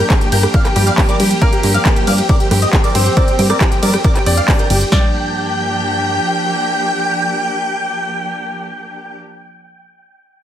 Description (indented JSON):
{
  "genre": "uplifting trance",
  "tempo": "137 BPM",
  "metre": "4/4",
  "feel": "straight",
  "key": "G minor",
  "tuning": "A4 = 440 Hz",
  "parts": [
    { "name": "big supersaw lead", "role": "melody", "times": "0.0-9.2 s", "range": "G4 to G5", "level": "-20 LUFS", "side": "right 1 dB", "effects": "vintage 12-bit sampler grit, sidechain pumping, dub echo" },
    { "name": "plucky unison lead", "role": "second line", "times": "0.0-9.2 s", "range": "G5 to G6", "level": "-25 LUFS", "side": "left 1 dB", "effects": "lush chorus, sidechain pumping, dub echo" },
    { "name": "muted studio string section", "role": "sustained chords", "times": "0.0-9.2 s", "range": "F3 to G4", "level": "-22 LUFS", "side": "equal", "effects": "sidechain pumping" },
    { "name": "plucky analog bass", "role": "bass", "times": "0.0-6.2 s", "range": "G1 to G2", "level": "-16 LUFS", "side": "equal", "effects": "sidechain pumping" },
    { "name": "punchy analog drum machine", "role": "drums", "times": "0.1-5.0 s", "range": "kick drum, snare drum", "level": "-14 LUFS", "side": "equal", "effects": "studio reverb" },
    { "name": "techno drum kit", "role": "drums", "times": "0.1-4.9 s", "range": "handclaps, hi-hat, ride cymbal, rim click", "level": "-20 LUFS", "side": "equal", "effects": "overdrive, sidechain pumping on hats, studio reverb, sidechain pumping on cymbals" },
    { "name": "bright grand piano", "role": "second line", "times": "0.8-9.4 s", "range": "G3 to D5", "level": "-24 LUFS", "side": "left 1 dB", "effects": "tape echo" }
  ],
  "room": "light reverb, digital ambience",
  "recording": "none",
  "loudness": "-12 LUFS",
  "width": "side -10 dB against mid",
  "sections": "0.0-4.9 A section; 4.9-8.4 B section",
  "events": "drop 0.0-4.9",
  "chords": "0.0 Gm7"
}